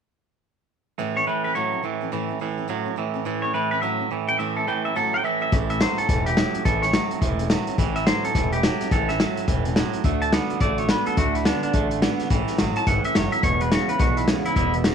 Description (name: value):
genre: rockabilly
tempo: 212 BPM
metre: 4/4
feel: swing 62% on 8ths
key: A major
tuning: A4 = 435 Hz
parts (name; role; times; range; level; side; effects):
- picked steel-string acoustic guitar; accompaniment; 1.0-14.9 s; E2 to A4; -32 LUFS; left 14 dB; none
- twangy electric guitar; riff; 1.0-14.9 s; E2 to B3; -26 LUFS; right 12 dB; none
- clean electric guitar; melody; 1.2-14.7 s; D4 to A5; -24 LUFS; left 1 dB; tape echo
- upright bass; bass; 5.5-14.9 s; E1 to D2; -27 LUFS; left 1 dB; none
- vintage drum kit; drums; 5.5-14.9 s; hi-hat, kick drum, snare drum; -23 LUFS; left 1 dB; none
room: light reverb, small room reverb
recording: 1960s-style stereo with parts hard left and right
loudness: -20 LUFS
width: side -7 dB against mid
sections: 1.0-5.5 A section; 5.5-14.9 B section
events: none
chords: 1.0 A; 10.0 D; 12.3 A; 13.4 E